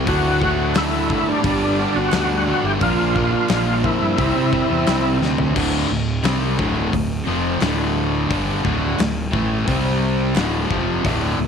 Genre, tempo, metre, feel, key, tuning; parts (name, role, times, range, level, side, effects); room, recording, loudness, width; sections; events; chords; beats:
classic rock; 88 BPM; 4/4; straight; A4 = 440 Hz
cranked stack guitar; riff; 0.0-11.5 s; D2 to C4; -24 LUFS; left 10 dB; overdrive
overdriven electric guitar; riff; 0.0-11.5 s; D2 to C4; -25 LUFS; right 10 dB
overdriven electric guitar; riff; 0.0-11.5 s; D2 to C5; -27 LUFS; equal
fuzz fingered electric bass; bass; 0.0-11.5 s; D1 to C3; -23 LUFS; right 1 dB; overdrive
overdriven tonewheel organ; melody; 0.1-5.2 s; D4 to G4; -21 LUFS; left 1 dB; slow rotary speaker, chorus vibrato, slapback echo
octave-fuzz lead guitar; second line; 0.1-5.2 s; G3 to E4; -29 LUFS; right 11 dB; distortion
big rock drum kit; drums; 0.1-11.2 s; crash cymbal, hi-hat, kick drum, snare drum, toms; -25 LUFS; left 3 dB
group handclap; percussion; 0.8-10.5 s; -35 LUFS; right 14 dB
light reverb, small room ambience; 1960s-style stereo with parts hard left and right; -17 LUFS; side -7 dB against mid
0.0-5.6 A section; 5.6-11.5 B section
drum fill 5.2-5.6
0.1 D; 1.4 G; 2.8 Bb; 4.2 C; 5.6 D5; 9.7 C5; 10.4 D5
| 0.08 0.76 1.45 2.13 | 2.82 3.50 4.19 4.88 | 5.56 6.25 6.93 7.62 | 8.31 8.99 9.68 10.37 | 11.05